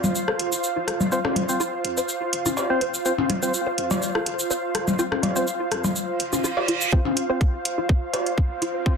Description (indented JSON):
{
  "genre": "minimal techno",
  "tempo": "124 BPM",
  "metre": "4/4",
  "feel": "swing 53% on 16ths",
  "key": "unclear",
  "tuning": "A4 = 439 Hz",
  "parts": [
    { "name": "punchy sub bass", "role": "bass", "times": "0.0-6.8 s", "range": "F1 to F2", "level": "-41 LUFS", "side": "right 1 dB", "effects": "sidechain pumping, high-pass filter" },
    { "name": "electronic shaker and hi-hat", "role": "drums", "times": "0.0-8.7 s", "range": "none", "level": "-28 LUFS", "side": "equal", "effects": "none" },
    { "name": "electronic percussion blips, rim click and cowbell", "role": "percussion", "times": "0.0-8.2 s", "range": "none", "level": "-25 LUFS", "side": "left 3 dB", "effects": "none" },
    { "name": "airy breathy pad", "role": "texture", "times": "0.0-9.0 s", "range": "F4 to F5", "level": "-27 LUFS", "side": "right 2 dB", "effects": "chorus, sidechain pumping" },
    { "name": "hollow square pluck", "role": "riff", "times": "0.3-8.6 s", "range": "F4 to F5", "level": "-29 LUFS", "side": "right 1 dB", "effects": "ensemble chorus, sidechain pumping, tape echo" },
    { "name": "percussive organ stab", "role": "stabs", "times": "1.1-8.9 s", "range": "C4 to C5", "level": "-27 LUFS", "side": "left 1 dB", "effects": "chorus, ping-pong delay" },
    { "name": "reverse cymbal and riser", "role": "sound effects", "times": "6.4-9.0 s", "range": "none", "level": "-30 LUFS", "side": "right 6 dB", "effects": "none" },
    { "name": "electronic kick drum", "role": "drums", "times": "6.9-9.0 s", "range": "none", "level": "-20 LUFS", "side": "equal", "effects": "none" }
  ],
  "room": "moderate small room reverb, RT60 0.5 s",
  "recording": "dense, heavily limited modern master",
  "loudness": "-21 LUFS",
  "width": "side -6 dB against mid",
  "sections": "0.0-6.9 A section; 6.9-9.0 B section",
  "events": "filter sweep on synth stab 0.0-6.9; reverse cymbal 6.4-6.9; build-up 6.9-9.0; riser 6.9-9.0; filter sweep on synth arpeggio sound 6.9-9.0",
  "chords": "0.0 F5"
}